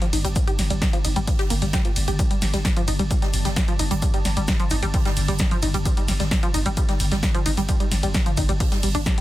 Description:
driving peak-time techno; 131 BPM; 4/4; straight; A4 = 440 Hz
tight sequenced synth; riff; 0.0-9.2 s; F3 to G4; -27 LUFS; equal; chorus, tube saturation, sidechain pumping, dub echo
swarming drone; drone; 0.0-9.2 s; G2 to D3; -32 LUFS; equal; built-in reverb, sidechain pumping
punchy analog drum machine; drums; 0.0-9.2 s; hi-hat, ride cymbal, snare drum; -28 LUFS; equal; sidechain pumping on hats, sidechain pumping on cymbals
growling 808-style bass; bass; 0.1-9.1 s; G1; -25 LUFS; equal; tube saturation, sidechain pumping, low-pass filter
natural country drum kit; drums; 0.1-9.2 s; hi-hat, shaker, snare drum; -36 LUFS; equal; sidechain pumping on hats, high-pass filter on hats, high-pass filter on snare, sidechain pumping on perc, high-pass filter on perc, high-pass filter on room
electronic kick drum; drums; 0.4-9.2 s; -23 LUFS; equal
studio ambience; dense, heavily limited modern master; -19 LUFS; side -15 dB against mid
0.0-9.2 A section
0.0 G5

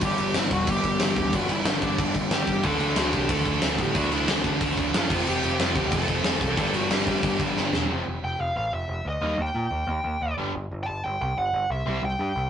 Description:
punk rock; 183 BPM; 4/4; straight; G major; A4 = 436 Hz
biting overdriven guitar; riff; 0.0-12.0 s; F2 to E4; -28 LUFS; left 1 dB
growling picked electric bass; bass; 0.0-12.5 s; E1 to Bb2; -30 LUFS; equal; overdrive
big rock drum kit; drums; 0.0-7.8 s; crash cymbal, kick drum, snare drum; -26 LUFS; equal
bluesy overdriven lead guitar; melody; 0.1-12.5 s; D4 to A5; -28 LUFS; right 1 dB; distortion
heavy high-gain guitar; riff; 2.6-7.9 s; F2 to D4; -30 LUFS; equal; distortion
moderate studio reverb, RT60 0.5 s; rough rehearsal-room recording, nothing above 10.9 kHz; -22 LUFS; side -9 dB against mid
0.0-7.9 A section; 7.9-12.5 B section
drum fill 7.6-7.9; half time 7.9-12.5
0.0 G; 2.6 D; 5.1 F; 6.6 G; 7.9 F; 9.2 Eb; 10.4 G5; 11.9 C

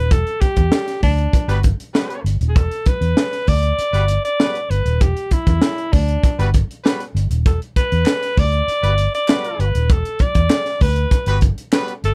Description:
funk; 98 BPM; 4/4; straight; E minor; A4 = 440 Hz
breathy alto saxophone; melody; 0.0-12.1 s; D4 to D5; -24 LUFS; equal
vintage muted fingered electric bass; bass; 0.0-12.1 s; D#1 to E2; -20 LUFS; equal
crisp fusion drum kit; drums; 0.1-12.1 s; hi-hat, kick drum, snare drum; -19 LUFS; equal
clear horn section; second line; 1.5-11.9 s; G3 to B4; -28 LUFS; equal
group handclap; percussion; 8.1-11.9 s; -34 LUFS; equal
little or no reverb; -18 LUFS; mono
0.0-12.1 A section
alto saxophone solo 0.0-12.1
0.0 Em7

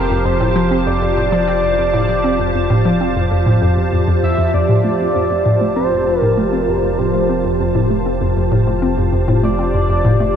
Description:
ambient, sequencer-driven space music; 98 BPM; 4/4; straight; F major; A4 = 441 Hz
pulse-width lead; melody; 0.0-10.4 s; Bb4 to E5; -20 LUFS; equal; chorus, ping-pong delay
evolving wavetable pad; sustained chords; 0.0-10.4 s; F3 to A5; -18 LUFS; right 1 dB; ensemble chorus, built-in reverb
hollow square pluck; riff; 0.0-10.3 s; F2 to C4; -17 LUFS; equal; chorus, ping-pong delay
round analog bass; bass; 0.0-10.4 s; F1; -24 LUFS; equal
wet huge ambient reverb, RT60 7.7 s; in a vast, echoing space; -13 LUFS; side -8 dB against mid
0.0-10.4 A section
0.0 Fadd9

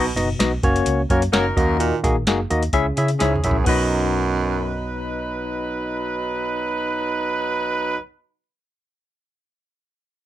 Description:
uptempo 1960s-style soul; 128 BPM; 4/4; straight; B major; A4 = 440 Hz
barky tine electric piano; accompaniment; 0.0-8.0 s; B1 to E5; -23 LUFS; left 3 dB; overdrive, auto-pan
warm baritone saxophone; riff; 0.0-5.0 s; F#2 to B2; -24 LUFS; right 6 dB
vintage muted fingered electric bass; bass; 0.0-8.0 s; F#1 to C#3; -25 LUFS; right 1 dB
soft vintage rhythm box; drums; 0.2-3.8 s; crash cymbal, hi-hat, kick drum, snare drum, toms; -23 LUFS; right 1 dB
warm horn section; second line; 1.1-8.0 s; F#3 to B4; -24 LUFS; right 2 dB
light reverb; -19 LUFS; side -13 dB against mid
0.0-3.7 A section; 3.7-7.4 B section
drum fill 3.2-3.7
0.0 B; 0.6 F#; 1.6 D#m; 2.7 C#m; 3.7 B

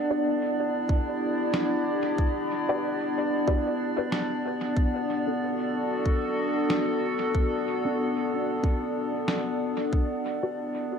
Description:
ambient dub; 93 BPM; 4/4; swing 58% on 16ths; E minor; A4 = 444 Hz
warbly tape-like pad; sustained chords; 0.0-11.0 s; B3 to D5; -26 LUFS; equal; chorus, built-in reverb
filtered dub chord stab; stabs; 0.1-10.6 s; C#4 to D5; -34 LUFS; left 1 dB; phaser, dub echo
electronic kick drum; drums; 0.9-10.1 s; -25 LUFS; equal
electronic snare drum; drums; 1.5-9.4 s; -34 LUFS; equal; dub echo
wet plate reverb, RT60 2.0 s; dreamy mix soaked in reverb, lossy compression artefacts; -25 LUFS; side -6 dB against mid
0.0-11.0 A section
filter sweep on synth stab 0.0-11.0
0.0 Em7; 4.8 Bm7; 9.9 Em7

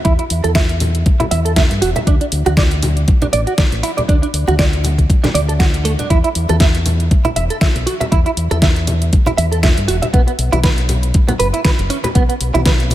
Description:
nu-disco, nu disco; 119 BPM; 4/4; swing 56% on 16ths; A4 = 440 Hz
direct-recorded clean electric guitar; riff; 0.0-12.7 s; A3 to E5; -19 LUFS; right 4 dB; ensemble chorus, low-pass filter, analog delay
pop drum kit; drums; 0.0-12.9 s; hi-hat, snare drum; -21 LUFS; equal; overdrive
fingered electric bass with an envelope filter; bass; 0.1-12.9 s; E1 to G2; -17 LUFS; equal; sidechain pumping
electronic kick drum; drums; 0.1-12.8 s; -14 LUFS; equal; overdrive
congas and bongos; percussion; 0.4-12.9 s; -25 LUFS; left 2 dB
light reverb, digital ambience; -12 LUFS; side -13 dB against mid
0.0-12.9 A section
filter sweep on clean electric guitar 0.0-12.9

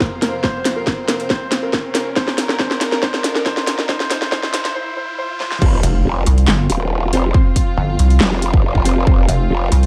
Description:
heavy wobble dubstep; 139 BPM; 4/4; half-time; A4 = 440 Hz
warm grand piano; melody; 0.0-5.6 s; Bb4 to C5; -26 LUFS; equal; vintage 12-bit sampler grit, delay
dark chamber string section; sustained chords; 0.0-9.9 s; F2 to C5; -29 LUFS; equal; sidechain pumping
dubstep drum kit; drums; 0.0-9.9 s; crash cymbal, handclaps, hi-hat, snare drum; -22 LUFS; equal; studio ambience
electronic kick drum; drums; 0.0-9.2 s; -18 LUFS; equal; studio ambience
riser and impact; sound effects; 0.0-7.3 s; -31 LUFS; equal
orchestra-hit-like synth stab; stabs; 5.6-9.2 s; C4 to C5; -27 LUFS; equal; built-in reverb, delay
growl bass; bass; 5.6-9.7 s; Eb1 to F1; -20 LUFS; equal; chorus, overdrive
pulsing pluck wobble bass; bass; 5.8-9.9 s; F1 to C2; -15 LUFS; equal; chorus, overdrive
light reverb, digital ambience; dark, warm production, high-pass filter; -17 LUFS; mono
0.0-5.6 A section; 5.6-9.9 B section
build-up 0.0-5.6; drum fill 0.0-4.8, 5.4; filter sweep on string section 0.0-5.6; filter sweep 0.0-5.6; break 4.8-5.6; drop 5.6-9.9; impact 5.6-7.3
0.0 F5

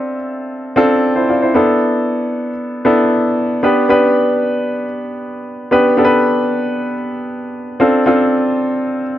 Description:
pop; 115 BPM; 4/4; straight; A4 = 441 Hz
clear baby grand piano; solo; 0.0-9.2 s; B3 to E5; -13 LUFS; equal
light reverb; dry, close 1970s-style studio recording; -12 LUFS; side -12 dB against mid
0.0-3.6 A section; 3.6-9.2 B section
0.0 Dm7; 1.5 E7sus4; 3.6 G; 7.8 Dm7

